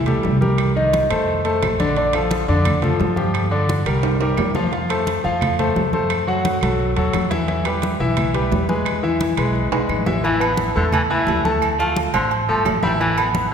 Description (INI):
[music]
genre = latin, salsa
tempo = 174 BPM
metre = 4/4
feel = straight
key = A minor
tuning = A4 = 440 Hz
[part]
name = upright bass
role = bass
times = 0.0-13.5 s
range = G1 to G2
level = -23 LUFS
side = right 1 dB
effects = none
[part]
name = bright concert grand piano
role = accompaniment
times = 0.1-13.5 s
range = D3 to F6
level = -20 LUFS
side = left 1 dB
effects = none
[part]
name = congas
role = percussion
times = 0.1-13.5 s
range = none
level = -26 LUFS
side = equal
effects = none
[part]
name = timbales and agogo bells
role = percussion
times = 0.1-13.5 s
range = none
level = -27 LUFS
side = right 6 dB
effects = none
[part]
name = claves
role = percussion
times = 0.6-13.4 s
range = none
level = -33 LUFS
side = right 3 dB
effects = none
[part]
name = raspy baritone saxophone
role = second line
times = 10.2-13.5 s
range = D3 to A3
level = -22 LUFS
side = equal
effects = none
[sound]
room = wet concert hall reverb, RT60 2.2 s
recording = recorded in a church or concert hall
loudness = -17 LUFS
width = side -7 dB against mid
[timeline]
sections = 0.0-10.2 A section; 10.2-13.5 B section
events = drum fill 4.0-4.7, 9.7-10.2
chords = 0.0 Am7; 0.6 Cm7; 1.3 F; 2.0 Bbmaj7; 3.3 Gm7; 4.0 C5; 4.7 F; 6.1 F#dim; 6.8 B7; 7.5 Em; 8.9 E; 10.2 Asus2; 11.6 Dm7; 13.0 Asus2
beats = 0.24 | 0.58 0.93 1.28 1.62 | 1.97 2.31 2.66 3.00 | 3.35 3.69 4.04 4.38 | 4.73 5.07 5.42 5.76 | 6.11 6.45 6.80 7.14 | 7.49 7.83 8.18 8.52 | 8.87 9.21 9.55 9.90 | 10.24 10.59 10.93 11.28 | 11.62 11.97 12.31 12.66 | 13.01 13.35